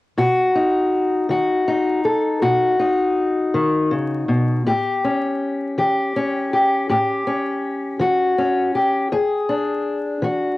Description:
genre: acoustic country blues, solo or duo.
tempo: 54 BPM (dotted quarters).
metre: 12/8.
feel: straight.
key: unclear.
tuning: A4 = 439 Hz.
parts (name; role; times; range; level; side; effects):
fingerpicked steel-string acoustic guitar; solo; 0.2-10.6 s; E2 to A4; -17 LUFS; left 1 dB; cassette tape.
room: light reverb, small room reverb.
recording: home recording on cassette, vinyl crackle.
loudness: -17 LUFS.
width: side -18 dB against mid.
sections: 0.2-10.6 A section.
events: none.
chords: 0.2 B; 4.7 A7; 9.1 E7.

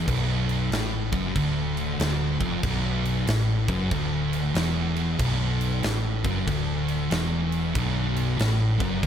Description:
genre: stoner and doom metal.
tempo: 94 BPM.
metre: 4/4.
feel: swing 64% on 8ths.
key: B minor.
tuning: A4 = 440 Hz.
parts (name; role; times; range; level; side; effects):
thick fuzz guitar; riff; 0.0-9.1 s; B1 to A2; -27 LUFS; left 6 dB; distortion.
thick fuzz guitar; riff; 0.0-9.1 s; B1 to A2; -28 LUFS; right 7 dB; distortion.
hollow-body short-scale fingered electric bass; bass; 0.0-9.1 s; B0 to A1; -31 LUFS; equal; overdrive.
big rock drum kit; drums; 0.1-9.1 s; crash cymbal, kick drum, snare drum; -30 LUFS; right 1 dB; none.
room: little or no reverb.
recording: none.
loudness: -23 LUFS.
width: side -9 dB against mid.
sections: 0.0-9.1 A section.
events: none.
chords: 0.0 Bm.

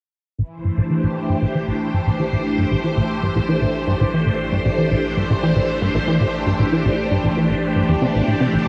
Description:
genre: ambient, sequencer-driven space music.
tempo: 116 BPM.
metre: 4/4.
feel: straight.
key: A minor.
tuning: A4 = 441 Hz.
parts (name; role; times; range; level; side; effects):
phased string machine; sustained chords; 0.4-8.7 s; E3 to C5; -23 LUFS; equal; ensemble chorus, phaser.
plucky analog bass; riff; 0.4-8.7 s; A1 to E3; -22 LUFS; equal; ensemble chorus, vintage 12-bit sampler grit, tape echo.
warm sub bass; bass; 0.4-8.7 s; A1; -38 LUFS; equal; none.
room: moderate huge ambient reverb, RT60 8.4 s.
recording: none.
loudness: -20 LUFS.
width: mono.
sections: 0.4-8.7 A section.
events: fade-in on sub bass 0.4-8.7; filter sweep on analog synth bass 0.4-8.7.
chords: 0.4 Am.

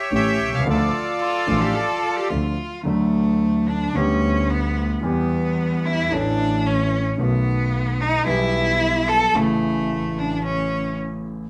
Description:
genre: tango.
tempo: 110 BPM.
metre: 4/4.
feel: rubato.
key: D major.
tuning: A4 = 441 Hz.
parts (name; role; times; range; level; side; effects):
bandoneon; melody; 0.0-2.3 s; F4 to G5; -24 LUFS; equal; none.
warm concert grand piano; accompaniment; 0.1-11.4 s; A1 to C#5; -25 LUFS; equal; none.
rich double bass; bass; 0.1-11.4 s; A1 to E2; -28 LUFS; equal; none.
warm cello; second line; 1.2-11.0 s; A3 to A4; -25 LUFS; equal; none.
room: wet studio reverb, RT60 0.6 s.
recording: band playing live in one room.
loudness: -21 LUFS.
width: mono.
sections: 0.0-2.9 A section; 2.9-11.5 B section.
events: cello solo 2.9-11.5.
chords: 0.0 A7; 0.7 Dm; 2.9 D; 3.9 G/D; 5.0 Em; 6.1 A; 7.2 B7; 8.3 Em/B; 9.3 A.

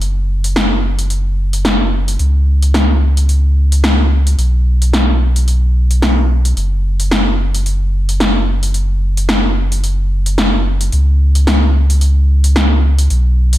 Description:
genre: organic downtempo.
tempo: 110 BPM.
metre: 4/4.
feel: swing 57% on 16ths.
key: unclear.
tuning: A4 = 440 Hz.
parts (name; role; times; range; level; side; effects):
warm sub bass; bass; 0.0-13.6 s; F#1 to C#2; -12 LUFS; equal; none.
deep house drum kit; drums; 0.0-13.6 s; hi-hat, snare drum; -16 LUFS; equal; overdrive.
room: light reverb.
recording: none.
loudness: -11 LUFS.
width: side -14 dB against mid.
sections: 0.0-13.6 A section.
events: none.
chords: none.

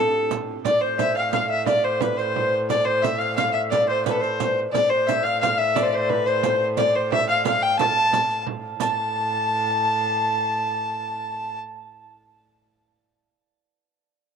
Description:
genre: medieval dance.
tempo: 118 BPM (dotted quarters).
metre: 6/8.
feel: straight.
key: A minor.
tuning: A4 = 440 Hz.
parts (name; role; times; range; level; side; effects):
warm fiddle; melody; 0.0-11.6 s; A4 to A5; -22 LUFS; left 1 dB; none.
concert harp; second line; 0.0-12.3 s; C4 to A5; -28 LUFS; right 9 dB; tape echo.
tenor recorder; second line; 0.0-11.6 s; A4 to A5; -28 LUFS; left 8 dB; none.
rich viola da gamba; drone; 0.0-11.6 s; A2; -33 LUFS; right 1 dB; stereo widening.
frame drum; percussion; 0.1-9.0 s; none; -29 LUFS; right 12 dB; none.
riq; percussion; 0.3-9.0 s; none; -32 LUFS; right 13 dB; none.
room: wet spring reverb, RT60 2.3 s.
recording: 1960s-style stereo with parts hard left and right.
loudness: -20 LUFS.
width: side -6 dB against mid.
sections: 0.7-8.8 A section; 8.8-10.8 B section.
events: none.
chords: none.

